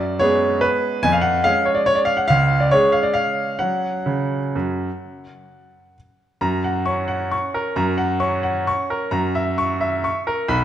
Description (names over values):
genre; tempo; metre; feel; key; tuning
classical, piano waltz; 124-150 BPM; 3/4; rubato; F# major from 6.4 s; A4 = 440 Hz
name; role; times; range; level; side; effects
bright grand piano; solo; 0.0-10.6 s; B1 to C#6; -18 LUFS; equal; none
room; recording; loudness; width
moderate scoring stage reverb, RT60 1.9 s; dark, warm production; -18 LUFS; side -11 dB against mid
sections
0.0-6.4 A section; 6.4-10.6 B section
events
none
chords
0.0 G#m7b5/F#; 1.0 C#/E#; 2.3 C#; 3.6 F#5; 6.4 F#; 9.1 F#7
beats
0.22 0.62 | 1.04 1.45 1.88 | 2.30 2.71 3.15 | 3.60 4.06 4.54 | 5.00 5.47 5.95 | 6.42 6.87 7.33 | 7.77 8.21 8.68 | 9.14 9.59 10.06 | 10.50